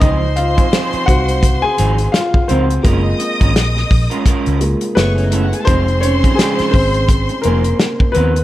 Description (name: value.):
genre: lush 1970s-style soul.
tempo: 85 BPM.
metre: 4/4.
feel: swing 58% on 16ths.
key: Db major.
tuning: A4 = 440 Hz.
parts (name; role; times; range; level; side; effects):
warm studio string section; second line; 0.0-8.1 s; Db4 to Eb6; -23 LUFS; right 1 dB; none.
dark baby grand piano; accompaniment; 0.0-8.4 s; Ab3 to Ab5; -18 LUFS; left 1 dB; none.
electric guitar through a small old amp; riff; 0.0-8.4 s; F3 to Bb4; -24 LUFS; right 4 dB; spring reverb.
vintage muted fingered electric bass; bass; 0.0-8.4 s; F1 to Eb2; -17 LUFS; equal; none.
warm soul drum kit; drums; 0.0-8.4 s; hi-hat, kick drum, snare drum; -15 LUFS; equal; none.
room: small room ambience.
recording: none.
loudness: -12 LUFS.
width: side -14 dB against mid.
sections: 0.0-8.4 A section.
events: grand piano solo 0.0-8.4.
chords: 0.0 Dbmaj9; 2.8 Gbmaj9; 5.0 Gbm7; 5.7 Fm7.